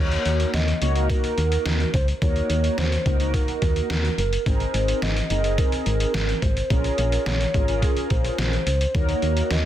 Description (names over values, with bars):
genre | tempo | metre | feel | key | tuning
synth-pop | 107 BPM | 4/4 | straight | unclear | A4 = 441 Hz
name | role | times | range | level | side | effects
hollow clarinet-like synth lead | melody | 0.0-9.7 s | Ab4 to Eb5 | -27 LUFS | equal | chorus, ping-pong delay
mellow synth brass | accompaniment | 0.0-9.6 s | Bb3 to Db5 | -28 LUFS | right 2 dB | chorus
solid FM bass | bass | 0.0-9.7 s | Gb1 to Eb2 | -24 LUFS | equal | none
trip hop sampler-style drum kit | drums | 0.1-9.6 s | hi-hat, kick drum, snare drum | -24 LUFS | equal | overdrive
room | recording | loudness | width
light reverb, digital ambience | dense, heavily limited modern master | -20 LUFS | side -12 dB against mid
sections
0.0-9.7 A section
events
none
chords
0.0 Ebm; 4.5 Abadd9; 6.7 Bbm7; 8.9 Ebm